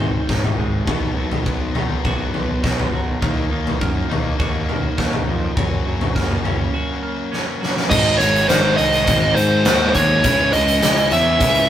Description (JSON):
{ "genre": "quiet-loud alternative rock", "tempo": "102 BPM", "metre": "4/4", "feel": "straight", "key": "Ab mixolydian", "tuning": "A4 = 441 Hz", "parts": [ { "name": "twelve-string electric guitar", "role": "arpeggios", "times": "0.0-7.9 s", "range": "B2 to Ab4", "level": "-28 LUFS", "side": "right 3 dB", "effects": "none" }, { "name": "distorted electric guitar", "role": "riff", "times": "0.0-11.7 s", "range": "Gb2 to Fb4", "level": "-26 LUFS", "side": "left 5 dB", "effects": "overdrive" }, { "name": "fuzz picked electric bass", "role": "bass", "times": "0.0-11.7 s", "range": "Gb1 to Ab2", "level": "-23 LUFS", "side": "equal", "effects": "overdrive" }, { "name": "big rock drum kit", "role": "drums", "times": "0.0-11.7 s", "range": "crash cymbal, hi-hat, kick drum, snare drum, toms", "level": "-21 LUFS", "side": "equal", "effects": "none" }, { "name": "fuzz lead guitar", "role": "melody", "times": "7.9-11.7 s", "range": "C5 to Fb5", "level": "-16 LUFS", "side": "right 1 dB", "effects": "distortion" }, { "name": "warm symphonic string section", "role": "sustained chords", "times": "7.9-11.7 s", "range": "Eb4 to Ab5", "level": "-30 LUFS", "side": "left 1 dB", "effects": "none" }, { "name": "fuzz guitar", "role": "riff", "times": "7.9-11.7 s", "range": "Ab2 to Fb4", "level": "-26 LUFS", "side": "equal", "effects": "none" }, { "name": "scooped high-gain guitar", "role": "riff", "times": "7.9-11.7 s", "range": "Ab2 to Eb4", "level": "-24 LUFS", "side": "right 5 dB", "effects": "distortion" } ], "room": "light reverb", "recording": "rough rehearsal-room recording", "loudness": "-16 LUFS", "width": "side -11 dB against mid", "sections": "0.0-7.9 A section; 7.9-11.7 B section", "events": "break 6.7-7.9; drum fill 7.3-7.9", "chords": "0.0 Ab; 0.9 B; 3.2 Ebm; 5.6 Gb; 7.9 Ab; 10.2 Dbm" }